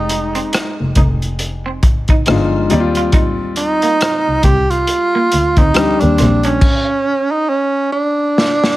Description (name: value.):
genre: R&B, neo-soul.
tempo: 69 BPM.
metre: 4/4.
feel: swing 59% on 16ths.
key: Eb major.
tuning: A4 = 440 Hz.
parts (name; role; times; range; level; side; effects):
breathy tenor saxophone; melody; 0.0-8.8 s; Db4 to G4; -15 LUFS; right 2 dB; slapback echo.
warm baby grand piano; accompaniment; 0.0-6.6 s; G3 to D5; -20 LUFS; left 4 dB; none.
warm double bass; bass; 0.0-6.5 s; F1 to Eb2; -17 LUFS; equal; none.
electric guitar at the edge of break-up; second line; 0.1-6.6 s; Bb3 to F4; -24 LUFS; right 3 dB; lush chorus.
crunchy breakbeat drum kit; drums; 0.1-8.8 s; crash cymbal, hi-hat, kick drum, rim click, snare drum; -15 LUFS; equal; none.
room: little or no reverb.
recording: none.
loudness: -12 LUFS.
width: side -17 dB against mid.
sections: 0.0-8.8 A section.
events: stop 6.6-8.8; drum fill 8.4-8.8.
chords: 0.0 Fm9; 2.7 Ebmaj9; 6.6 N.C..